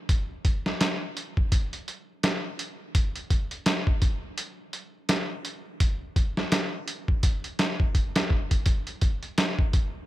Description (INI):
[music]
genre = trip hop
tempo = 84 BPM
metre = 4/4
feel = swing 58% on 16ths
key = none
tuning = none
[part]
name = trip hop sampler-style drum kit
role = drums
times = 0.1-9.9 s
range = hi-hat, kick drum, snare drum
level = -24 LUFS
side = equal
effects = none
[sound]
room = little or no reverb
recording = none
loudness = -24 LUFS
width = side -16 dB against mid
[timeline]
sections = 0.0-10.1 A section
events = none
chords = none